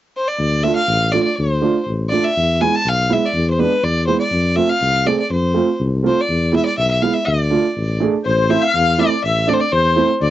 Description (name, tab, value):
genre	klezmer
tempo	122 BPM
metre	2/4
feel	straight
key	D dorian sharp4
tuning	A4 = 442 Hz
part	clear violin	melody	0.2-10.3 s	B4 to A5	-18 LUFS	left 1 dB	cassette tape
part	breathy tuba	bass	0.4-10.3 s	A1 to F2	-19 LUFS	left 2 dB	none
part	dark upright piano	accompaniment	0.6-10.1 s	G#3 to G#4	-18 LUFS	right 5 dB	none
part	accordion	second line	8.2-10.3 s	C5 to F5	-21 LUFS	left 9 dB	light tremolo tuning
room	moderate booth ambience, RT60 0.2 s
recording	home recording on cassette, nothing above 7.9 kHz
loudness	-14 LUFS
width	side -13 dB against mid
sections	0.4-8.2 A section; 8.2-10.3 B section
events	none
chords	0.4 Dm; 2.4 E; 4.3 F; 6.3 E; 7.3 Dm; 8.2 Am